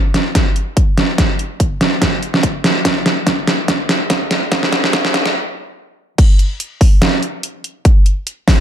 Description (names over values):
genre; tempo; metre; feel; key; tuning
dubstep; 144 BPM; 4/4; swing 55% on 16ths, half-time; none; none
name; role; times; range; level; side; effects
dubstep drum kit; drums; 0.1-8.6 s; crash cymbal, hi-hat, snare drum; -15 LUFS; right 1 dB; overdrive
electronic kick drum; drums; 0.3-8.6 s; none; -13 LUFS; equal; overdrive
room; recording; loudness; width
light reverb; dark, warm production, high-pass filter; -13 LUFS; side -10 dB against mid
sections
0.0-6.2 A section; 6.2-8.6 B section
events
build-up 0.0-6.2; drum fill 0.0-5.3; filter sweep 0.0-6.2; stop 5.3-6.2; drop 6.2-8.6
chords
none